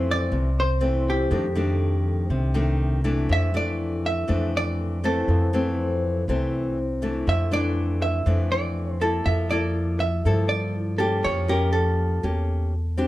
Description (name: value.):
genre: bossa nova.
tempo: 121 BPM.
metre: 4/4.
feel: straight.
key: F major.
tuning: A4 = 441 Hz.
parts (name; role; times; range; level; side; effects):
vintage hollow-body jazz guitar; melody; 0.0-13.1 s; G4 to E5; -27 LUFS; right 2 dB; none.
nylon-string guitar; accompaniment; 0.0-13.1 s; F2 to A4; -26 LUFS; left 2 dB; none.
upright bass; bass; 0.0-13.1 s; C2 to G2; -24 LUFS; equal; none.
room: light reverb.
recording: lossy compression artefacts.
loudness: -21 LUFS.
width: side -16 dB against mid.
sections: 0.0-13.1 A section.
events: none.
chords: 0.0 Fmaj7; 1.3 F13; 3.3 Dmadd9/F; 5.3 Fmaj7; 7.3 Bbmaj7#11/F (rootless); 9.2 Gm13/F; 11.2 A7b9/F.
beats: 0.31 0.81 | 1.30 1.80 2.30 2.79 | 3.29 3.79 4.28 4.78 | 5.28 5.77 6.27 6.76 | 7.26 7.76 8.26 8.75 | 9.25 9.75 10.24 10.74 | 11.24 11.73 12.23 12.73.